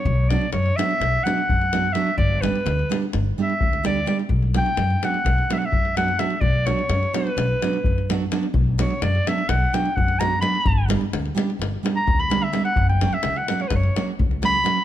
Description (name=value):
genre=balkan folk, Balkan wedding band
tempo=255 BPM (eighths)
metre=9/8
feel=straight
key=B harmonic minor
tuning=A4 = 442 Hz
part: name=bright clarinet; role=melody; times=0.0-14.8 s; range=B4 to B5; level=-23 LUFS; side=equal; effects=none
part: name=upright bass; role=bass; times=0.1-14.6 s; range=F#1 to F#2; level=-23 LUFS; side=equal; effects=none
part: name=davul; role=percussion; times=0.1-14.8 s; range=none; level=-25 LUFS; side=left 2 dB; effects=none
part: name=nylon-string guitar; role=accompaniment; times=0.3-14.8 s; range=F#3 to G4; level=-26 LUFS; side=right 6 dB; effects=none
room=light reverb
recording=close, detailed microphones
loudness=-19 LUFS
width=side -12 dB against mid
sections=0.0-14.8 A section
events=clarinet solo 0.0-14.8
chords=0.0 Bm; 2.2 G; 4.3 Bm; 10.7 G; 12.8 F#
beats=| 0.07 0.30 0.54 0.77 1.01 1.24 1.48 1.71 1.95 | 2.19 2.42 2.65 2.89 3.13 3.36 3.60 3.83 4.07 | 4.30 4.54 4.77 5.01 5.24 5.48 5.71 5.95 6.18 | 6.42 6.66 6.89 7.12 7.36 7.60 7.83 8.07 8.30 | 8.54 8.77 9.01 9.24 9.48 9.71 9.95 10.18 10.42 | 10.65 10.89 11.12 11.36 11.59 11.83 12.06 12.30 12.53 | 12.77 13.00 13.24 13.47 13.71 13.94 14.18 14.41 14.64